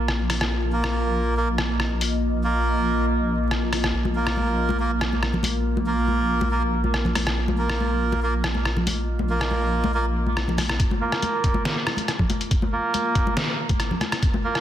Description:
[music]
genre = deep dubstep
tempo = 140 BPM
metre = 4/4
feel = half-time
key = unclear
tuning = A4 = 440 Hz
[part]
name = deep dark ambient pad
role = sustained chords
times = 0.0-14.6 s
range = Bb3 to Eb5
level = -29 LUFS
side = equal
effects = chorus, built-in reverb
[part]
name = deep soft wobble bass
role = bass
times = 0.0-10.8 s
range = Bb1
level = -25 LUFS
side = equal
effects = chorus
[part]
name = trip hop sampler-style drum kit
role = drums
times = 0.1-14.6 s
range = hi-hat, rim click, snare drum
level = -27 LUFS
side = left 1 dB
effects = soft clipping on snare
[part]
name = melodica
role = stabs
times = 0.7-14.6 s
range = Bb3 to Bb4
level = -27 LUFS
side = right 2 dB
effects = low-pass filter, dub echo
[part]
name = congas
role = percussion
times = 4.0-14.4 s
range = none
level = -30 LUFS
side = left 3 dB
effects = dub echo
[part]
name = electronic kick drum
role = drums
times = 10.8-14.3 s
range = none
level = -23 LUFS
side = equal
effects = none
[sound]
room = moderate lush hall reverb, RT60 2.1 s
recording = dense, heavily limited modern master, vinyl crackle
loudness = -21 LUFS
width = side -11 dB against mid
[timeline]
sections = 0.0-10.8 A section; 10.8-14.6 B section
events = build-up 10.8-14.6; filter sweep on melodica 10.8-14.6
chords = 0.0 Bb5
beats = 0.08 | 0.51 0.94 1.37 1.80 | 2.23 2.65 3.08 3.51 | 3.94 4.37 4.80 5.23 | 5.66 6.08 6.51 6.94 | 7.37 7.80 8.23 8.65 | 9.08 9.51 9.94 10.37 | 10.80 11.23 11.65 12.08 | 12.51 12.94 13.37 13.80 | 14.23

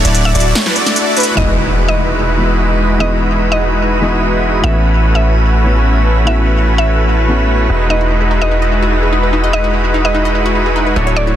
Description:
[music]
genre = future bass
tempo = 147 BPM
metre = 4/4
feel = half-time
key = E major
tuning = A4 = 440 Hz
[part]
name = airy dreamy lead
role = arpeggios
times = 0.0-1.3 s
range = B4 to D5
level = -24 LUFS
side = left 2 dB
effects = chorus, ping-pong delay
[part]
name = supersaw chords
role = riff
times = 0.0-11.4 s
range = G#3 to D5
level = -15 LUFS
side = right 1 dB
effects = low-pass filter
[part]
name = long sustained 808-style bass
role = bass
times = 0.0-11.4 s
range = D1 to A1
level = -14 LUFS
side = equal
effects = none
[part]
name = big-room dance drum kit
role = drums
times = 0.0-1.3 s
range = crash cymbal, hi-hat, snare drum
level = -20 LUFS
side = equal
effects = none
[part]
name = mallet-like synth pluck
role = melody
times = 0.3-11.4 s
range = D5 to E5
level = -21 LUFS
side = equal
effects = chorus, digital delay
[part]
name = felt-muted upright piano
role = accompaniment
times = 1.4-7.7 s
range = E3 to D#5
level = -22 LUFS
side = left 2 dB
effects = ping-pong delay
[part]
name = impact and riser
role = sound effects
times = 1.4-3.0, 11.2-11.4 s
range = none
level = -23 LUFS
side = equal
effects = none
[part]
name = wide unison pluck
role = arpeggios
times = 7.9-11.3 s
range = C#4 to D#5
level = -22 LUFS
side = left 2 dB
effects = ping-pong delay
[sound]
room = light reverb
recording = dense, heavily limited modern master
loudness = -10 LUFS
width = side -11 dB against mid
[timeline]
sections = 0.0-1.4 A section; 1.4-11.4 B section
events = drop 0.0-1.4; impact 1.4-3.0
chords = 0.0 Dmaj9; 1.4 Emaj9; 4.6 A69; 7.7 Emaj9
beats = 0.15 0.55 0.96 | 1.37 1.78 2.19 2.60 | 3.00 3.41 3.82 4.23 | 4.64 5.04 5.45 5.86 | 6.27 6.68 7.08 7.49 | 7.90 8.31 8.72 9.13 | 9.53 9.94 10.35 10.76 | 11.17

